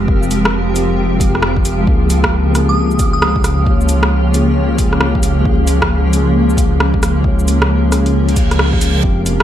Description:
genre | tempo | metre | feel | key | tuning
future garage | 134 BPM | 4/4 | swing 64% on 16ths | unclear | A4 = 439 Hz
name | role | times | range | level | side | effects
mellow tine electric piano | accompaniment | 0.0-9.4 s | F3 to Db5 | -18 LUFS | left 2 dB | slow stereo tremolo, sidechain pumping, diffuse ambient delay
granular cloud pad | sustained chords | 0.0-9.4 s | F3 to Db5 | -20 LUFS | equal | built-in reverb, sidechain pumping
dark detuned saw bass | bass | 0.0-9.4 s | F1 to Db2 | -16 LUFS | equal | tube saturation, sidechain pumping
flickering grainy texture | texture | 0.0-9.4 s | G4 to F5 | -26 LUFS | right 1 dB | built-in reverb, lush chorus
electronic kick drum | drums | 0.1-9.4 s | none | -17 LUFS | equal | studio reverb
deep house drum kit | drums | 0.2-9.4 s | cabasa, hi-hat, rim click | -19 LUFS | right 1 dB | studio reverb
glassy synth bell | melody | 2.7-3.3 s | Eb6 | -22 LUFS | right 2 dB | chorus, tremolo, diffuse ambient delay
reverse cymbal | sound effects | 8.3-9.0 s | none | -24 LUFS | right 4 dB | none
room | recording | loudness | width
light reverb, digital ambience | vinyl crackle | -11 LUFS | side -11 dB against mid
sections
0.0-9.4 A section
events
reverse cymbal 8.3-9.0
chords
0.0 Fmadd9; 1.9 Db6

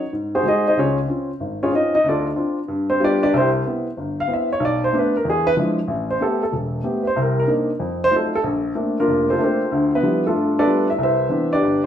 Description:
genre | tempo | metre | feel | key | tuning
jazz | 188 BPM | 4/4 | swing 64% on 8ths | A minor from 5.9 s | A4 = 440 Hz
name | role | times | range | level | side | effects
warm upright piano | solo | 0.0-11.9 s | E1 to F5 | -17 LUFS | equal | none
room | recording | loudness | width
wet studio reverb, RT60 0.9 s | heard from further back in the room | -17 LUFS | side -9 dB against mid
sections
0.0-5.9 A section; 5.9-11.9 A section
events
upright piano solo 0.0-5.9, 5.9-11.9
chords
0.1 Ab7; 0.8 Dbmaj7; 2.0 Dm7; 2.7 G7; 3.3 Cmaj7; 4.6 Bm7; 5.2 E7b9; 5.9 Am9; 7.2 Cm9; 7.8 F7b9; 8.4 Bbmaj9; 9.7 Dm11; 10.3 G9; 11.0 Cmaj9

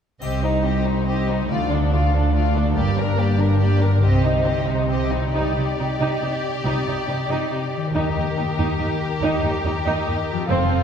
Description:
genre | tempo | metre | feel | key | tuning
cinematic, heroic adventure film score | 94 BPM (dotted quarters) | 6/8 | straight | C dorian | A4 = 441 Hz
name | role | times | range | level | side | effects
warm symphonic violin section | melody | 0.2-10.8 s | A4 to Eb5 | -31 LUFS | left 3 dB | none
warm studio violin section | second line | 0.2-10.8 s | D4 to Bb4 | -27 LUFS | left 3 dB | none
warm symphonic viola section | accompaniment | 0.2-10.8 s | A3 to Eb4 | -26 LUFS | right 1 dB | none
concert harp | arpeggios | 0.2-10.8 s | G2 to D5 | -27 LUFS | left 5 dB | none
dark symphonic double bass section | bass | 0.2-10.7 s | F1 to Eb2 | -23 LUFS | right 2 dB | none
warm symphonic cello section | bass | 0.2-10.8 s | C2 to C3 | -24 LUFS | right 1 dB | none
triangle | percussion | 0.2-1.0 s | none | -47 LUFS | equal | none
room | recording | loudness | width
wet scoring stage reverb, RT60 1.6 s | heard from further back in the room | -18 LUFS | side -8 dB against mid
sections
0.2-5.4 A section; 5.4-10.8 B section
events
build-up 5.4-10.8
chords
0.2 Cm; 1.5 Dm; 2.8 Gm; 4.0 Cm; 5.4 Cmadd9; 7.9 Eb

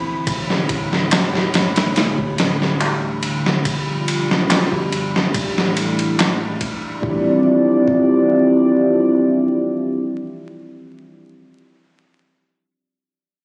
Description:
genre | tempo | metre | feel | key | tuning
trip hop | 71 BPM | 4/4 | straight | D dorian | A4 = 440 Hz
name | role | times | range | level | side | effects
dark analog pad | sustained chords | 0.0-11.2 s | D3 to D5 | -20 LUFS | equal | chorus
wind-like tuned noise texture | texture | 0.0-7.0 s | B5 | -34 LUFS | equal | built-in reverb
boom bap sampler-style drum kit | drums | 0.3-8.1 s | kick drum, ride cymbal, snare drum | -22 LUFS | equal | none
darbuka | percussion | 1.1-6.4 s | none | -28 LUFS | equal | none
room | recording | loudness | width
light reverb | recorded on a phone in the room, studio reverb, vinyl crackle | -18 LUFS | mono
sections
0.0-7.0 A section; 7.0-10.4 B section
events
filter sweep on analog synth pad 0.0-7.0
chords
0.3 A7/D; 3.7 G7/D; 5.3 A7sus4; 7.0 Dm11

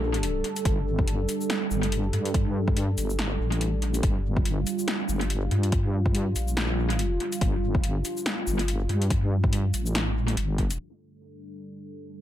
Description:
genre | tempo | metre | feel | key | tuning
deep dubstep | 142 BPM | 4/4 | swing 58% on 16ths, half-time | G minor | A4 = 440 Hz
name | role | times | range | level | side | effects
dark analog pad | sustained chords | 0.0-12.2 s | G3 to A4 | -32 LUFS | right 2 dB | chorus
deep soft wobble bass | bass | 0.0-10.8 s | G1 to G2 | -26 LUFS | equal | chorus
deep house drum kit | drums | 0.1-10.8 s | hi-hat, shaker, snare drum | -31 LUFS | left 1 dB | overdrive, analog delay
electronic kick drum | drums | 0.7-10.7 s | none | -26 LUFS | equal | overdrive
room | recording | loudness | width
digital ambience | echo-heavy mix, low-pass filter | -24 LUFS | side -12 dB against mid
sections
0.0-10.8 A section; 10.8-12.2 B section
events
filter sweep 10.8-12.2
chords
0.0 Gsus2

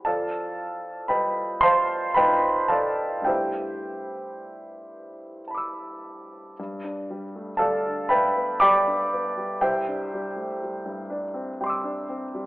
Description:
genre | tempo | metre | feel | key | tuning
classical, impressionist solo piano | 52-62 BPM | 3/4 | rubato | G mixolydian | A4 = 439 Hz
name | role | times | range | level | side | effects
warm baby grand piano | solo | 0.0-12.5 s | C2 to E6 | -23 LUFS | equal | none
room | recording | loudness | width
wet recital hall reverb, RT60 1.4 s | telephone sound | -22 LUFS | side -19 dB against mid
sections
0.0-6.6 A section; 6.6-12.5 B section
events
none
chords
0.1 F9; 3.3 G69; 6.6 G6; 9.6 Cadd9

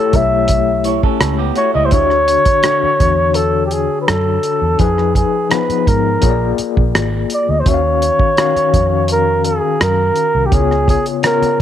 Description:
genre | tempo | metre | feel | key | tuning
lush 1970s-style soul | 84 BPM | 4/4 | straight | unclear | A4 = 442 Hz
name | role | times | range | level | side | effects
breathy flugelhorn | melody | 0.0-11.6 s | G4 to E5 | -15 LUFS | right 1 dB | none
overdriven tine electric piano | accompaniment | 0.0-11.6 s | C#3 to E#5 | -19 LUFS | left 12 dB | medium tremolo
vintage muted fingered electric bass | bass | 0.1-11.4 s | G#1 to Ab2 | -19 LUFS | right 1 dB | none
cloth-damped thuddy drum kit | drums | 0.1-11.6 s | hi-hat, kick drum, rim click | -17 LUFS | right 1 dB | none
electric guitar through a small old amp | riff | 0.9-2.1 s | G3 to C#5 | -20 LUFS | right 14 dB | none
room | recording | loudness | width
light reverb, small room ambience | 1960s-style stereo with parts hard left and right | -12 LUFS | side -10 dB against mid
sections
0.0-11.6 A section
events
none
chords
0.0 A7; 1.9 Dmaj7; 4.8 Fm7b5; 6.2 A#7; 7.7 D#m9; 10.5 C#7

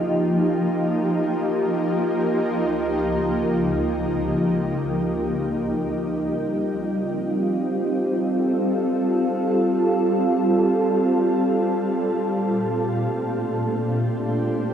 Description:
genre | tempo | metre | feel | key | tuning
ambient | free time | none | none | F mixolydian | A4 = 439 Hz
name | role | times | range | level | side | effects
shimmering ambient pad | sustained chords | 0.0-14.7 s | Db2 to C5 | -20 LUFS | equal | chorus, built-in reverb, shimmer reverb
organ-like drone | drone | 0.0-5.6 s | F3 to F4 | -40 LUFS | left 1 dB | none
room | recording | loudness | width
wet huge ambient reverb, RT60 7.8 s | none | -20 LUFS | side -8 dB against mid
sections
0.0-5.5 A section; 5.5-14.7 B section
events
none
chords
0.0 Fsus4; 2.3 Dbadd9; 5.5 Fadd9; 11.9 Bbadd9

